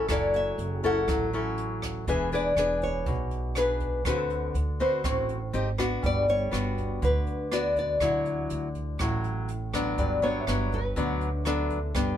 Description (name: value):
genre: bossa nova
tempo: 121 BPM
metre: 4/4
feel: straight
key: unclear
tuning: A4 = 440 Hz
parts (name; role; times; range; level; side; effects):
- nylon-string guitar; melody; 0.0-12.2 s; G4 to F#5; -29 LUFS; left 1 dB; none
- nylon-string guitar; accompaniment; 0.0-12.2 s; G2 to B4; -29 LUFS; left 3 dB; none
- upright bass; bass; 0.0-12.2 s; E1 to D2; -31 LUFS; right 1 dB; none
- jazz brush drum kit; drums; 0.1-12.1 s; hi-hat, kick drum, rim click; -34 LUFS; right 1 dB; none
- warm grand piano; accompaniment; 10.2-12.2 s; C#5 to E5; -40 LUFS; right 4 dB; none
room: light reverb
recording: band playing live in one room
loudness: -25 LUFS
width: side -10 dB against mid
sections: 0.0-10.0 A section; 10.0-12.2 A section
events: none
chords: 0.0 F#m7; 2.1 E7; 4.0 D6; 5.5 G#maj7; 6.0 Gmaj7; 8.0 Dadd9; 10.0 Gmaj7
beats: | 0.09 0.58 1.08 1.57 | 2.07 2.56 3.06 3.55 | 4.05 4.54 5.04 5.53 | 6.03 6.52 7.01 7.51 | 8.00 8.49 8.99 9.48 | 9.98 10.47 10.96 11.46 | 11.95